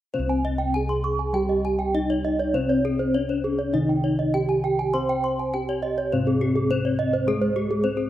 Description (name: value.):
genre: Balinese gamelan.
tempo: 101 BPM.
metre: 4/4.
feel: uneven beats.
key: C pelog.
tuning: A4 = 440 Hz.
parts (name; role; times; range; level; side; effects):
gamelan-type bronze metallophone; accompaniment; 0.1-8.1 s; C3 to C4; -30 LUFS; equal; none.
gamelan-type bronze metallophone; arpeggios; 0.1-8.1 s; G4 to C6; -30 LUFS; left 5 dB; none.
gamelan-type bossed gongs; bass; 0.1-8.1 s; C2 to C5; -29 LUFS; equal; none.
gamelan-type bronze metallophone; melody; 0.2-8.1 s; Ab3 to C5; -25 LUFS; equal; none.
gamelan-type bronze metallophone; arpeggios; 0.3-7.8 s; Ab4 to Db6+35c; -28 LUFS; right 4 dB; none.
room: light reverb, small room reverb.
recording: rough home demo mix.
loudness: -21 LUFS.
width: side -13 dB against mid.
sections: 0.1-8.1 A section.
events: none.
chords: none.